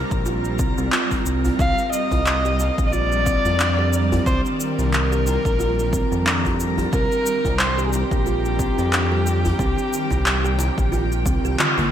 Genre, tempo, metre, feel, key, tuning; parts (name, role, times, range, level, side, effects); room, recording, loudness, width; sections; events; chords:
organic downtempo; 90 BPM; 4/4; swing 56% on 16ths; A4 = 440 Hz
granular cloud pad; sustained chords; 0.0-11.9 s; Eb3 to Bb5; -28 LUFS; equal; built-in reverb, lush chorus, sidechain pumping, shimmer reverb
smooth synth bass; bass; 0.0-11.6 s; Bb1 to F2; -23 LUFS; equal; sidechain pumping
deep house drum kit; drums; 0.1-11.9 s; cabasa, handclaps, toms; -24 LUFS; left 1 dB; gated reverb
electronic kick drum; drums; 0.1-11.9 s; -24 LUFS; equal
kalimba; arpeggios; 0.3-11.9 s; Bb3 to G4; -27 LUFS; right 2 dB; ping-pong delay, shimmer reverb
djembe; percussion; 0.3-11.9 s; -32 LUFS; left 1 dB
dark kamancheh; melody; 1.6-11.6 s; G4 to F5; -24 LUFS; left 1 dB; ping-pong delay, shimmer reverb
moderate plate reverb, RT60 2.3 s; bright 1980s-style digital production; -18 LUFS; side -10 dB against mid
0.0-11.9 A section
drum fill 11.6-11.9; band accent 11.6-11.9
0.0 C7(no3); 1.6 Eb